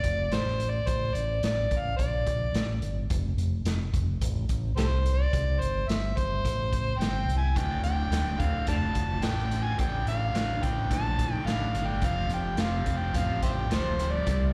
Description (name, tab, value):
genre	blues rock power trio and southern rock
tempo	108 BPM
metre	4/4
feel	straight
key	D minor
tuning	A4 = 440 Hz
part	overdriven harmonica	melody	0.0-14.4 s	G4 to A5	-34 LUFS	equal	slapback echo, analog delay
part	overdriven fingered electric bass	bass	0.0-14.5 s	D1 to C2	-31 LUFS	equal	none
part	raw garage drum kit	drums	0.0-14.4 s	hi-hat, kick drum, snare drum	-34 LUFS	equal	none
part	lead guitar through a small cranked amp	second line	7.0-14.5 s	G3 to F4	-42 LUFS	equal	overdrive, analog delay
part	overdriven semi-hollow guitar	riff	7.6-14.5 s	D2 to C4	-37 LUFS	equal	none
room	light reverb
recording	live gig heard through the venue's PA, recital hall reverb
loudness	-28 LUFS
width	mono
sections	0.0-14.5 A section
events	none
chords	0.0 D5; 3.1 F; 5.3 C5; 7.6 Dm; 12.0 F